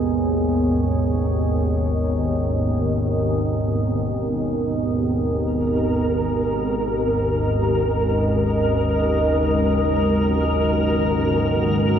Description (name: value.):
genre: dark ambient drone.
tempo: free time.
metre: none.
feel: none.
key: G# minor.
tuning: A4 = 439 Hz.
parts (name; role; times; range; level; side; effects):
deep dark ambient pad; sustained chords; 0.0-12.0 s; G#3 to D#5; -22 LUFS; equal; chorus, built-in reverb.
organ-like drone; drone; 0.0-12.0 s; G#1 to D#2; -21 LUFS; equal; ensemble chorus, built-in reverb.
flickering grainy texture; texture; 5.5-12.0 s; A#4; -24 LUFS; right 1 dB; built-in reverb.
room: wet cathedral reverb, RT60 4.9 s.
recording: studio ambience.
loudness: -18 LUFS.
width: side -8 dB against mid.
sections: 0.0-12.0 A section.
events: none.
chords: 0.0 G#m; 5.3 D#m7/G#.